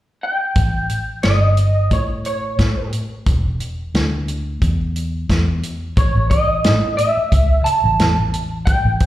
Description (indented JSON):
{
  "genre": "straight-eighth soul blues",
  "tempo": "89 BPM",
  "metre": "4/4",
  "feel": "swing 55% on 16ths",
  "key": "A mixolydian",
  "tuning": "A4 = 440 Hz",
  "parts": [
    { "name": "electric guitar through a small old amp", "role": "melody", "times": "0.2-9.1 s", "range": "C#5 to A5", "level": "-19 LUFS", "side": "right 1 dB", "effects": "ensemble chorus, slapback echo" },
    { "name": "vintage muted fingered electric bass", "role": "bass", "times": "0.6-9.1 s", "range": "E1 to A2", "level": "-18 LUFS", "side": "equal", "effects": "none" },
    { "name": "warm soul drum kit", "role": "drums", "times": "0.6-9.1 s", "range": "hi-hat, kick drum, snare drum", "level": "-19 LUFS", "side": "equal", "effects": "none" }
  ],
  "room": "light reverb",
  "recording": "live gig heard through the venue's PA, recital hall reverb",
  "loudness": "-15 LUFS",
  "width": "side -14 dB against mid",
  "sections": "0.6-6.0 A section; 6.0-9.1 B section",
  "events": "none",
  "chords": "0.0 N.C.; 0.6 A7; 3.3 Dsus2/E; 6.0 A5",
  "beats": "| 0.56 1.24 1.91 2.59 | 3.27 3.94 4.62 5.29 | 5.97 6.64 7.32 8.00 | 8.67"
}